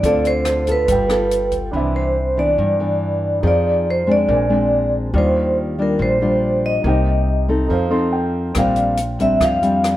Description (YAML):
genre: bossa nova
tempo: 141 BPM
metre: 4/4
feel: straight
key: unclear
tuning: A4 = 440 Hz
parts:
  - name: vibraphone with medium mallets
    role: melody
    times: 0.0-10.0 s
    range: Bb4 to F5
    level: -18 LUFS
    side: right 1 dB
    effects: none
  - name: nylon-string guitar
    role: accompaniment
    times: 0.0-10.0 s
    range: G2 to A4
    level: -21 LUFS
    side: left 1 dB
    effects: none
  - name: warm concert grand piano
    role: accompaniment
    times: 0.0-10.0 s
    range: C4 to C6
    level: -27 LUFS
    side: right 4 dB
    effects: none
  - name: upright bass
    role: bass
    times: 0.0-10.0 s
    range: G1 to G2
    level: -22 LUFS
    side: equal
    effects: none
  - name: open jazz drum kit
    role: drums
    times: 0.0-1.6, 8.5-9.9 s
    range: hi-hat, kick drum, rim click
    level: -27 LUFS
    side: left 1 dB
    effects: none
room: light reverb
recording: none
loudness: -15 LUFS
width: side -14 dB against mid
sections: 0.0-1.7 A section; 1.7-10.0 A section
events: grand piano fill 7.7-8.6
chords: 0.0 Dm7; 0.9 G9; 1.7 Cmaj9; 3.4 Fm7; 4.3 Bb9; 5.1 Ebmaj9; 6.8 Cm7; 7.7 F7; 8.6 Bb69